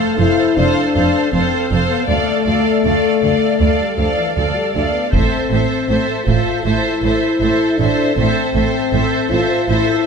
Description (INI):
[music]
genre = cinematic, epic orchestral film score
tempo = 79 BPM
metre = 4/4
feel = straight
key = A minor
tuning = A4 = 441 Hz
[part]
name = warm symphonic violin section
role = melody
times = 0.0-10.1 s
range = E5 to F5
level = -25 LUFS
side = left 2 dB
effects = none
[part]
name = rich symphonic violin section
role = second line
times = 0.0-10.1 s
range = C5 to D5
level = -21 LUFS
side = left 1 dB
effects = none
[part]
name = rich symphonic viola section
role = accompaniment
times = 0.0-10.1 s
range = A4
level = -23 LUFS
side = right 2 dB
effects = none
[part]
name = dark French horn section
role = sustained chords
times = 0.0-10.1 s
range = E3 to F4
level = -18 LUFS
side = left 5 dB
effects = none
[part]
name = rich symphonic double bass section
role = bass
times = 0.2-9.8 s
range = F1 to D2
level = -21 LUFS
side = right 4 dB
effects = none
[part]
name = warm symphonic cello section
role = bass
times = 0.2-9.8 s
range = D2 to A2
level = -23 LUFS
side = right 4 dB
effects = none
[part]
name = taiko ensemble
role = drums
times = 5.1-6.6 s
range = none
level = -21 LUFS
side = equal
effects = none
[sound]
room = moderate scoring stage reverb, RT60 1.7 s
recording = none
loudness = -13 LUFS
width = side -6 dB against mid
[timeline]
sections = 0.0-10.1 A section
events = none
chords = 0.0 F; 2.1 Dm; 5.1 Am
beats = 0.57 1.33 | 2.09 2.85 3.61 4.37 | 5.13 5.89 6.65 7.41 | 8.16 8.93 9.68